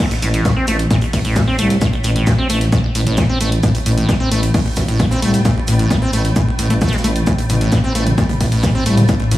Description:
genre	driving peak-time techno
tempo	132 BPM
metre	4/4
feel	straight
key	A minor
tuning	A4 = 441 Hz
part	acid bass, saw	riff	0.0-9.4 s	A1 to C4	-19 LUFS	equal	sidechain pumping, dub echo
part	swarming drone	drone	0.9-9.4 s	A2	-22 LUFS	equal	built-in reverb, sidechain pumping
part	electronic kick drum	drums	0.0-9.2 s	none	-17 LUFS	equal	none
part	punchy analog drum machine	drums	0.0-9.4 s	crash cymbal, hi-hat, toms	-24 LUFS	equal	sidechain pumping on hats, sidechain pumping on cymbals, sidechain pumping on toms
part	big rock drum kit	drums	0.1-9.4 s	hi-hat, shaker, snare drum	-29 LUFS	right 1 dB	sidechain pumping on hats, high-pass filter on hats, high-pass filter on snare, sidechain pumping on perc, high-pass filter on perc, high-pass filter on room
part	growling FM bass	bass	0.2-9.4 s	A1 to C2	-18 LUFS	equal	sidechain pumping
room	light reverb, small room ambience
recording	none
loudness	-13 LUFS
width	side -15 dB against mid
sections	0.0-9.4 A section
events	none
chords	0.0 Am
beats	| 0.00 0.45 0.91 1.36 | 1.81 2.27 2.72 3.18 | 3.63 4.09 4.54 5.00 | 5.45 5.91 6.36 6.82 | 7.27 7.72 8.18 8.63 | 9.09

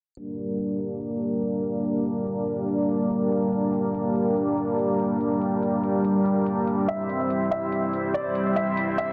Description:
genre	heavy wobble dubstep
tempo	143 BPM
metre	4/4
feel	swing 54% on 16ths, half-time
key	unclear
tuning	A4 = 438 Hz
part	supersaw pad	sustained chords	0.2-9.1 s	G3 to E5	-26 LUFS	equal	low-pass filter
part	electronic hi-hat	drums	0.2-9.1 s	none	-55 LUFS	equal	overdrive
part	bright baby grand piano	melody	6.9-9.1 s	D5 to E5	-30 LUFS	equal	delay
room	moderate plate reverb, RT60 1.5 s, digital ambience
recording	dense, heavily limited modern master, low-pass filter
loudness	-25 LUFS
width	mono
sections	0.2-9.1 A section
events	filter sweep on supersaw synth 0.2-9.1; filter sweep 0.2-9.1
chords	0.2 Gm; 6.9 C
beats	| 0.17 0.59 1.01 1.43 | 1.85 2.27 2.69 3.11 | 3.53 3.95 4.37 4.79 | 5.21 5.63 6.04 6.46 | 6.88 7.30 7.72 8.14 | 8.56 8.98

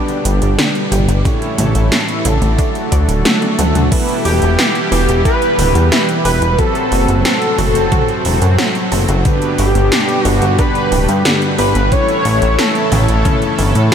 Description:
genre	synthwave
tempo	90 BPM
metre	4/4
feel	straight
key	E minor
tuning	A4 = 440 Hz
part	warm analog pad	sustained chords	0.0-13.9 s	A2 to A4	-20 LUFS	equal	chorus, sidechain pumping
part	wide unison pluck	arpeggios	0.0-13.9 s	C#3 to D5	-24 LUFS	left 1 dB	ping-pong delay
part	mellow synth brass	stabs	0.0-13.9 s	G2 to D5	-22 LUFS	right 2 dB	chorus, ping-pong delay
part	80s electronic pad drums	drums	0.1-13.9 s	crash cymbal, hi-hat, snare drum, toms	-19 LUFS	equal	gated reverb on snare and toms, overdrive
part	chorused synth bass	bass	0.3-13.9 s	D1 to A2	-14 LUFS	equal	none
part	electronic kick drum	drums	1.3-13.4 s	none	-16 LUFS	equal	none
part	wide unison lead	melody	4.3-13.9 s	G4 to C#5	-17 LUFS	equal	lush chorus, analog delay
room	moderate huge ambient reverb, RT60 7.2 s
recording	dreamy mix soaked in reverb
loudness	-11 LUFS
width	side -8 dB against mid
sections	0.0-3.9 A section; 3.9-13.9 B section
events	drum fill 3.3-3.9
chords	0.0 G; 1.3 A; 2.6 D; 3.9 Em; 6.6 F#dim; 9.3 G; 11.9 A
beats	0.59 | 1.25 1.92 2.59 3.25 | 3.92 4.59 5.25 5.92 | 6.59 7.25 7.92 8.59 | 9.25 9.92 10.59 11.25 | 11.92 12.59 13.25 13.92

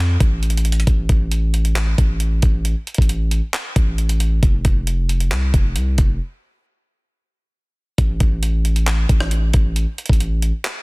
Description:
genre	hip hop, trap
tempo	135 BPM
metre	4/4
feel	half-time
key	unclear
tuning	A4 = 440 Hz
part	long sustained 808-style bass	bass	0.0-10.5 s	F1 to F2	-18 LUFS	equal	none
part	breakbeat sampler-style drum kit	drums	0.2-10.8 s	handclaps, hi-hat, kick drum, rim click	-18 LUFS	equal	soft clipping on snare
room	little or no reverb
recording	dense, heavily limited modern master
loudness	-16 LUFS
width	side -27 dB against mid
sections	0.0-8.0 A section; 8.0-10.8 B section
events	break 6.2-8.0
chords	none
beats	0.43 | 0.87 1.32 1.76 2.21 | 2.65 3.09 3.54 3.98 | 4.43 4.87 5.32 5.76 | 6.21 6.65 7.09 7.54 | 7.98 8.43 8.87 9.32 | 9.76 10.21 10.65

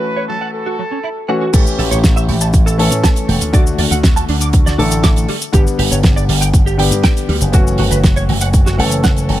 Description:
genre	nu-disco, nu disco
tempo	120 BPM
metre	4/4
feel	straight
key	A mixolydian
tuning	A4 = 440 Hz
part	mellow trumpet section	melody	0.0-1.2 s	A4 to B4	-23 LUFS	right 1 dB	tape echo
part	warm grand piano	accompaniment	0.0-9.4 s	D3 to A4	-19 LUFS	left 3 dB	sidechain pumping, ping-pong delay
part	direct-recorded clean electric guitar	riff	0.2-9.3 s	F#3 to D6	-23 LUFS	right 4 dB	ensemble chorus, ping-pong delay
part	slap bass with an envelope filter	bass	1.5-9.4 s	E1 to A2	-16 LUFS	equal	tube saturation, sidechain pumping
part	damped 70s drum kit	drums	1.5-9.4 s	cabasa, crash cymbal, hi-hat, snare drum	-18 LUFS	right 1 dB	none
part	electronic kick drum	drums	1.5-9.1 s	none	-12 LUFS	equal	none
room	little or no reverb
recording	none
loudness	-11 LUFS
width	side -14 dB against mid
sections	0.0-1.5 A section; 1.5-9.4 B section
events	drop 1.5-9.4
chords	0.0 F#m7; 1.5 A7; 3.5 D; 5.3 G; 7.5 F#m7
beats	0.04 0.54 1.04 | 1.54 2.04 2.54 3.04 | 3.54 4.04 4.54 5.04 | 5.54 6.04 6.54 7.04 | 7.54 8.04 8.54 9.04

